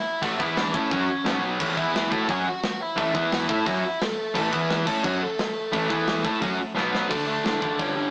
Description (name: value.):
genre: punk rock.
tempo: 174 BPM.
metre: 4/4.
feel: straight.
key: A major.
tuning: A4 = 439 Hz.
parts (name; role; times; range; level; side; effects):
biting lead guitar; melody; 0.0-8.1 s; A3 to G#5; -31 LUFS; equal; overdrive.
biting overdriven guitar; riff; 0.2-7.1 s; A2 to A4; -33 LUFS; equal; none.
distorted electric guitar; riff; 0.2-8.1 s; G2 to A4; -30 LUFS; equal; overdrive.
sludgy distorted guitar; riff; 0.2-7.1 s; A2 to A4; -34 LUFS; equal; none.
fuzz picked electric bass; bass; 0.2-8.1 s; G1 to A2; -34 LUFS; equal; overdrive.
tight metal drum kit; drums; 0.2-7.9 s; crash cymbal, hi-hat, kick drum, snare drum; -32 LUFS; equal; none.
room: moderate stone room reverb, RT60 1.1 s.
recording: rough rehearsal-room recording, tube saturation, small speaker sound.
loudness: -25 LUFS.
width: mono.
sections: 0.0-7.1 A section.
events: drum fill 6.8-7.1.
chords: 0.4 E5; 0.7 A; 1.3 B5; 1.6 A; 1.8 E5; 2.1 A; 3.1 E5; 3.5 A; 4.5 E5; 4.9 A; 5.9 E5; 6.2 A; 6.8 B5; 7.1 D5.